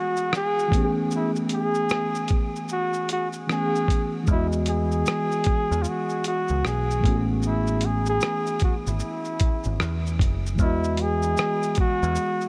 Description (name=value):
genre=lo-fi hip hop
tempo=76 BPM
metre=4/4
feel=swing 62% on 16ths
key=unclear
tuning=A4 = 436 Hz
part: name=breathy flugelhorn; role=melody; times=0.0-12.5 s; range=E4 to G#4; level=-29 LUFS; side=equal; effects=low-pass filter, tape echo
part: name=reed electric piano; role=accompaniment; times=0.0-12.5 s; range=E3 to D#5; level=-30 LUFS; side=equal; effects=low-pass filter
part: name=lo-fi sampler-style drum kit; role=drums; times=0.2-12.5 s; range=hi-hat, kick drum, rim click, shaker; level=-28 LUFS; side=equal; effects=none
part: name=deep dub picked electric bass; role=bass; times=4.3-12.2 s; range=F#1 to E2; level=-28 LUFS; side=equal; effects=none
room=moderate huge ambient reverb, RT60 6.9 s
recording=dreamy mix soaked in reverb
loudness=-24 LUFS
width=mono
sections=0.0-12.5 A section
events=break 0.0-4.3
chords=0.0 Emaj9; 0.7 Amaj9; 4.3 Emaj9; 7.0 Amaj9; 10.6 Emaj9